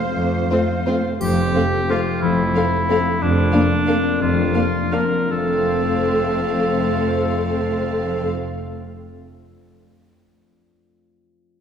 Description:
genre	classical, orchestral ballroom waltz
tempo	152-199 BPM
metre	3/4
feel	rubato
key	F major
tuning	A4 = 439 Hz
part	rich studio violin section	melody	0.0-8.3 s	C5 to F5	-32 LUFS	left 2 dB	none
part	clear oboe	second line	0.0-8.3 s	D4 to F5	-23 LUFS	right 1 dB	none
part	silver concert flute	second line	0.0-1.0 s	F5	-32 LUFS	right 4 dB	none
part	concert harp	arpeggios	0.0-9.1 s	F3 to C5	-24 LUFS	left 7 dB	none
part	rich studio cello section	bass	0.2-8.3 s	F2	-27 LUFS	right 2 dB	none
part	rich studio double bass section	bass	0.2-8.3 s	F1	-25 LUFS	right 3 dB	none
part	rich studio violin section	second line	0.5-8.3 s	C4 to C5	-27 LUFS	left 1 dB	none
part	clear studio viola section	accompaniment	0.5-8.3 s	A3 to C4	-24 LUFS	left 1 dB	none
part	mellow French horn section	sustained chords	0.5-1.0 s	A3 to C4	-29 LUFS	left 2 dB	none
part	triangle	percussion	1.2-1.9 s	none	-40 LUFS	equal	none
room	wet concert hall reverb, RT60 2.4 s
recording	heard from further back in the room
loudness	-17 LUFS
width	side -8 dB against mid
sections	0.0-1.2 A section; 1.2-5.3 B section; 5.3-7.5 C section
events	slowing down 2.7-5.3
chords	0.0 F; 3.2 Bb/F; 5.3 F

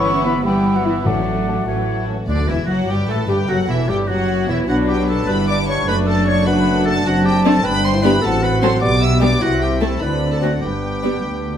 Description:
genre	quick classical-period movement for symphony orchestra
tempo	100 BPM (dotted quarters)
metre	6/8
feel	straight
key	D major, G major from 7.1 s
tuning	A4 = 441 Hz
part	clear studio violin section	melody	0.0-11.6 s	C#4 to E6	-26 LUFS	equal	none
part	dark clarinet	second line	0.0-11.6 s	D4 to E5	-28 LUFS	left 2 dB	none
part	silver concert flute	second line	0.0-11.5 s	A4 to C#6	-26 LUFS	left 2 dB	none
part	warm oboe	second line	0.0-11.6 s	D4 to E5	-26 LUFS	equal	none
part	warm studio violin section	second line	0.0-11.1 s	A3 to A4	-26 LUFS	left 1 dB	none
part	rich studio viola section	accompaniment	0.0-11.1 s	D3 to E4	-23 LUFS	left 1 dB	none
part	warm bassoon	accompaniment	0.0-2.1 s	A3 to B3	-25 LUFS	right 4 dB	none
part	rich studio double bass section	bass	0.0-11.6 s	E1 to D2	-22 LUFS	right 1 dB	none
part	warm studio cello section	bass	0.0-11.6 s	D2 to C#4	-22 LUFS	equal	none
part	warm French horn section	sustained chords	0.2-11.6 s	D3 to G4	-24 LUFS	left 1 dB	none
part	timpani	percussion	1.1-1.6 s	A2	-25 LUFS	left 2 dB	none
room	wet stone room reverb, RT60 1.2 s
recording	none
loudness	-15 LUFS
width	side -9 dB against mid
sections	0.0-2.3 A section; 2.3-11.6 B section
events	none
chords	0.0 Em/G; 1.1 D/A; 1.7 A; 2.3 D; 2.9 Gadd9; 3.5 A7; 4.7 Bm; 5.3 G; 5.9 D/F#; 7.1 D7/F#; 7.6 G; 8.2 F#dim/A; 8.8 G/B; 9.4 Am/C; 10.0 D5; 10.6 G

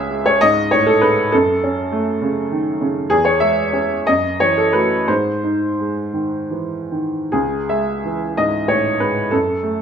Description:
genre	classical, romantic character piece for solo piano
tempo	48-69 BPM (dotted quarters)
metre	6/8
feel	rubato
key	C# minor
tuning	A4 = 440 Hz
part	clear upright piano	solo	0.0-9.8 s	C#2 to E5	-15 LUFS	equal	none
room	wet large studio reverb, RT60 0.9 s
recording	none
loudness	-15 LUFS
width	side -7 dB against mid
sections	0.0-9.8 A section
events	none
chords	0.0 C#5; 1.3 F#m; 3.1 C#m/E; 4.1 F#m7; 5.1 G#; 7.3 C#m

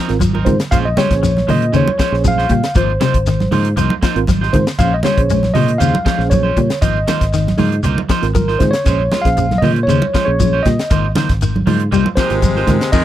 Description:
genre	afrobeat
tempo	118 BPM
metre	4/4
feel	straight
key	unclear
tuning	A4 = 440 Hz
part	clean electric guitar	arpeggios	0.0-13.0 s	C3 to Ab3	-20 LUFS	left 8 dB	ensemble chorus
part	electric guitar at the edge of break-up	stabs	0.0-13.0 s	F3 to C5	-23 LUFS	right 10 dB	tape echo
part	mellow reed electric piano	accompaniment	0.1-12.8 s	C4 to Db5	-23 LUFS	right 7 dB	fast tremolo
part	fingered electric bass	bass	0.1-13.0 s	Ab1 to Bb2	-17 LUFS	equal	none
part	tight funk drum kit	drums	0.1-13.0 s	hi-hat, kick drum, ride cymbal, snare drum	-19 LUFS	equal	none
part	congas	percussion	0.2-12.8 s	none	-21 LUFS	right 3 dB	none
part	shekere	percussion	0.2-13.0 s	none	-23 LUFS	left 1 dB	none
part	tine electric piano	melody	0.5-13.0 s	Bb4 to F5	-19 LUFS	equal	none
part	clear trumpet	second line	12.2-13.0 s	Ab3	-25 LUFS	right 4 dB	none
part	raspy baritone saxophone	second line	12.2-13.0 s	C3 to Eb3	-22 LUFS	left 9 dB	none
room	light reverb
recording	dry, close 1970s-style studio recording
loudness	-12 LUFS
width	side -12 dB against mid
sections	0.0-12.9 A section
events	none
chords	0.0 Ab69; 0.7 Bbm9; 2.8 Ab69; 4.8 Bbm9; 6.8 Ab69; 8.9 Bbm9; 10.9 Ab69

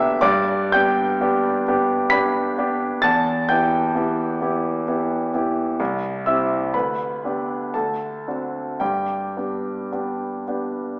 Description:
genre	classical, romantic nocturne for solo piano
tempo	54-66 BPM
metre	3/4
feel	rubato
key	G major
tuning	A4 = 439 Hz
part	clear concert grand piano	solo	0.0-11.0 s	C2 to B6	-19 LUFS	equal	none
room	wet recital hall reverb, RT60 1.5 s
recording	heard from further back in the room, small speaker sound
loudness	-19 LUFS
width	side -29 dB against mid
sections	0.0-11.0 A section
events	none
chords	0.2 G; 3.0 Em; 5.8 C; 6.7 G/D; 7.7 D7; 8.8 G

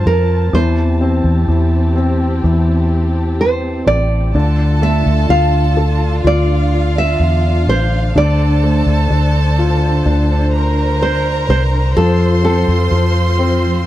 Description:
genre	pop ballad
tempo	63 BPM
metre	4/4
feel	straight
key	D minor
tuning	A4 = 440 Hz
part	nylon-string guitar	melody	0.0-13.4 s	A4 to F5	-18 LUFS	right 2 dB	tape echo
part	felt-muted upright piano	accompaniment	0.0-13.9 s	D3 to C5	-20 LUFS	left 2 dB	none
part	dark studio string section	sustained chords	0.0-13.9 s	D3 to A5	-22 LUFS	right 1 dB	none
part	vintage muted fingered electric bass	bass	0.0-13.8 s	A1 to F2	-14 LUFS	equal	none
part	warm studio violin section	second line	4.3-13.9 s	F4 to C6	-22 LUFS	right 1 dB	none
room	little or no reverb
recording	dry, close 1970s-style studio recording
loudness	-12 LUFS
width	side -14 dB against mid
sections	0.0-13.9 A section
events	none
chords	0.0 F; 0.5 Am7/E; 4.3 Dmadd9; 8.2 Bbmaj7/D; 12.0 F

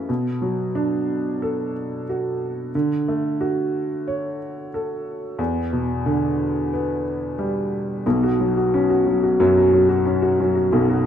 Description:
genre	folk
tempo	90 BPM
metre	4/4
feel	straight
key	unclear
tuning	A4 = 442 Hz
part	warm upright piano	solo	0.0-11.1 s	B1 to C#5	-19 LUFS	equal	none
room	moderate large studio reverb, RT60 1.4 s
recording	minimal, uncompressed stereo recording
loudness	-19 LUFS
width	side -9 dB against mid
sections	0.0-8.1 A section; 8.1-11.1 B section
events	none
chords	0.1 Bm7; 2.7 Dmaj7; 5.4 Em7; 8.1 Bsus2

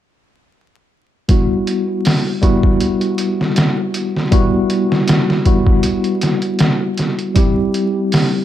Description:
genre	trip hop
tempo	79 BPM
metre	4/4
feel	swing 54% on 16ths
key	E minor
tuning	A4 = 437 Hz
part	tine electric piano	accompaniment	1.3-8.4 s	G3 to G4	-16 LUFS	equal	medium stereo tremolo, harmonic tremolo, tape echo
part	trip hop sampler-style drum kit	drums	1.3-8.3 s	hi-hat, kick drum, snare drum	-15 LUFS	equal	overdrive
room	light reverb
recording	dark, warm production, vinyl crackle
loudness	-13 LUFS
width	side -12 dB against mid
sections	1.3-8.4 A section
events	none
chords	1.3 Emadd9; 7.4 C

